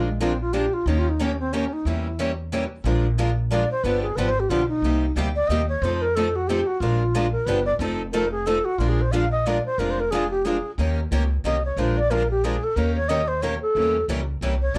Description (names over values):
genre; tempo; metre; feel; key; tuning
acoustic string swing (jazz manouche); 182 BPM; 3/4; swing 60% on 8ths; Bb mixolydian; A4 = 439 Hz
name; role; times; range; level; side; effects
bright reedy wooden-headed alto flute; second line; 0.0-14.8 s; Ab3 to F5; -26 LUFS; equal; none
picked steel-string acoustic guitar; accompaniment; 0.0-14.8 s; C3 to Bb4; -30 LUFS; equal; none
picked steel-string acoustic guitar; accompaniment; 0.0-14.8 s; C3 to Bb4; -33 LUFS; equal; none
upright bass; bass; 0.0-14.8 s; F1 to F2; -27 LUFS; equal; none
room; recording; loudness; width
moderate club reverb, RT60 0.6 s; worn, warbling old tape, cassette tape, warbly pitch drift; -23 LUFS; mono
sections
0.0-8.8 A section; 8.8-14.8 A section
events
alto flute solo 0.0-14.8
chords
0.0 Bb7; 0.9 Eb7; 1.9 Edim7; 2.8 Bb7; 3.8 G7; 4.8 Cm7; 5.8 F7; 6.8 Bb7; 7.5 G7; 7.8 F7; 8.8 Bb7; 10.8 Eb7; 11.8 Bb7; 12.8 Eb7; 13.8 Edim7